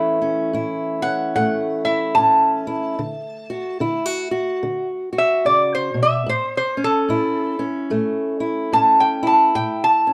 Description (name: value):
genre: acoustic country blues, solo or duo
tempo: 73 BPM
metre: 4/4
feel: swing 60% on 8ths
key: A major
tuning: A4 = 440 Hz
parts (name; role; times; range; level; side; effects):
- fingerpicked old ladder-braced acoustic guitar; accompaniment; 0.0-10.1 s; A2 to F#4; -24 LUFS; equal; none
- lap resonator guitar; melody; 1.0-10.1 s; A4 to A5; -19 LUFS; equal; none
room: moderate studio reverb, RT60 0.6 s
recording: none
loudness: -20 LUFS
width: mono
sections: 0.0-10.1 A section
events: none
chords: 0.0 A; 3.0 D; 6.3 A